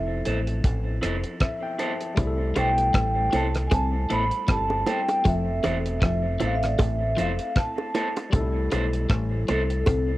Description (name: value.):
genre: lovers rock reggae.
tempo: 78 BPM.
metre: 4/4.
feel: swing 57% on 16ths.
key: C major.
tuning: A4 = 440 Hz.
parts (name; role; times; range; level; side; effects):
vibraphone with soft mallets; melody; 0.0-10.2 s; A4 to B5; -26 LUFS; equal; cassette tape, tape echo.
barky tine electric piano; accompaniment; 0.0-10.2 s; F3 to A5; -32 LUFS; left 2 dB; cassette tape, plate reverb.
deep dub fingered electric bass; bass; 0.0-10.2 s; E1 to C2; -26 LUFS; equal; none.
electric guitar through a small old amp; stabs; 0.3-9.6 s; E4 to C5; -32 LUFS; right 1 dB; spring reverb, cassette tape, analog delay, plate reverb.
damped 70s drum kit; drums; 0.3-10.1 s; hi-hat, kick drum, rim click; -24 LUFS; equal; cassette tape.
twelve-string electric guitar; riff; 2.2-10.1 s; E3 to C4; -32 LUFS; left 4 dB; cassette tape.
bongos; percussion; 2.2-10.1 s; none; -28 LUFS; right 3 dB; none.
room: light reverb.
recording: home recording on cassette.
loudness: -22 LUFS.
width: side -17 dB against mid.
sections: 0.0-10.2 A section.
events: tine electric piano fill 1.0-2.2.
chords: 0.0 Fmaj7; 2.2 C6; 5.3 Fmaj7; 8.3 C6.